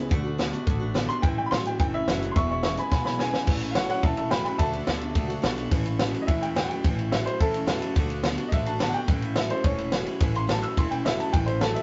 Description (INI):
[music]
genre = rockabilly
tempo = 214 BPM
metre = 4/4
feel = straight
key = A mixolydian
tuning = A4 = 441 Hz
[part]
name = picked steel-string acoustic guitar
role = accompaniment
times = 0.0-11.8 s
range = E2 to F#4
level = -36 LUFS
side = equal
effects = none
[part]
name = electric guitar through a small old amp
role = riff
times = 0.0-11.8 s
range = E2 to B3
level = -35 LUFS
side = equal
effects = none
[part]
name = upright bass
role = bass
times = 0.0-11.7 s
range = E1 to E2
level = -35 LUFS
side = equal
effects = none
[part]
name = compact cocktail drum kit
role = drums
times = 0.1-11.8 s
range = crash cymbal, hi-hat, kick drum, ride cymbal, snare drum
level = -29 LUFS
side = equal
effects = none
[part]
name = clear upright piano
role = melody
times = 1.1-11.8 s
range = E4 to E6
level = -32 LUFS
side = equal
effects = none
[sound]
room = light reverb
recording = rough rehearsal-room recording, nothing above 7.6 kHz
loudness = -26 LUFS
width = mono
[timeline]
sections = 0.0-3.5 A section; 3.5-11.8 B section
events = drum fill 2.9-3.5; upright piano solo 3.5-11.8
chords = 0.1 D; 1.2 A; 2.4 E; 3.5 A; 4.6 D; 5.7 A; 8.0 D; 9.1 A